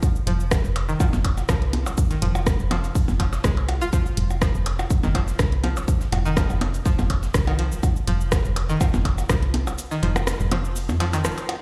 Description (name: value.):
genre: minimal techno.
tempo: 123 BPM.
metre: 4/4.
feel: swing 53% on 16ths.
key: unclear.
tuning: A4 = 439 Hz.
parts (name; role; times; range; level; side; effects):
dusty soul sampler-style drum kit; drums; 0.0-11.6 s; hi-hat, snare drum; -42 LUFS; equal; none.
electronic kick drum; drums; 0.0-9.4 s; none; -24 LUFS; equal; none.
punchy analog drum machine; drums; 0.0-11.6 s; hi-hat, rim click, shaker; -32 LUFS; equal; none.
percussion blips; percussion; 0.0-11.6 s; none; -33 LUFS; equal; none.
string-like resonator pluck; riff; 0.3-11.3 s; Eb3 to F4; -32 LUFS; equal; chorus, sidechain pumping, digital delay.
woody FM bass; bass; 0.3-11.3 s; F1 to F2; -27 LUFS; equal; sidechain pumping.
room: light reverb.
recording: played on a big sound system in a bare room, large studio reverb.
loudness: -22 LUFS.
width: mono.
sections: 0.0-11.6 A section.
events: kick drops out 9.8-11.6.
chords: 0.0 F5.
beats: | 0.03 0.51 1.00 1.49 | 1.98 2.47 2.95 3.44 | 3.93 4.42 4.91 5.39 | 5.88 6.37 6.86 7.34 | 7.83 8.32 8.81 9.29 | 9.78 10.27 10.76 11.25.